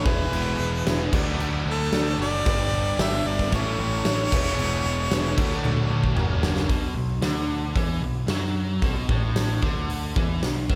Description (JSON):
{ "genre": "classic rock", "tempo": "113 BPM", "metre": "4/4", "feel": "straight", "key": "unclear", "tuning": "A4 = 445 Hz", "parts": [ { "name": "clear harmonica", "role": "melody", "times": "0.0-6.1 s", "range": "A4 to E5", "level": "-31 LUFS", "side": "equal", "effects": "slapback echo" }, { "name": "dark upright piano", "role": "accompaniment", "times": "0.0-6.6 s", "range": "A3 to E5", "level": "-41 LUFS", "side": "equal", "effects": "none" }, { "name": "picked twelve-string acoustic guitar", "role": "accompaniment", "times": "0.0-6.7 s", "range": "E2 to A4", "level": "-42 LUFS", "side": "equal", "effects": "none" }, { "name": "biting overdriven guitar", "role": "riff", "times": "0.0-10.8 s", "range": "F#2 to E4", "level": "-33 LUFS", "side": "equal", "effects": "slapback echo" }, { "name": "overdriven semi-hollow guitar", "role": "riff", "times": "0.0-10.8 s", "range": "E2 to A4", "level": "-34 LUFS", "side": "equal", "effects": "none" }, { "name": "growling picked electric bass", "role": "bass", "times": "0.1-10.8 s", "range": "E1 to F#2", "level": "-31 LUFS", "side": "equal", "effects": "overdrive" }, { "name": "huge arena drum kit", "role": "drums", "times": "0.1-10.8 s", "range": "crash cymbal, hi-hat, kick drum, snare drum, toms", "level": "-28 LUFS", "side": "equal", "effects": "none" } ], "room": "light reverb, small room ambience", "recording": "none", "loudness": "-24 LUFS", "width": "mono", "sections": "0.0-6.7 A section; 6.7-10.8 B section", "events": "drum fill 5.6-6.7", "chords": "0.1 E; 1.1 D; 2.5 G; 3.5 A; 4.3 E; 5.4 D; 6.2 F#; 6.7 B5" }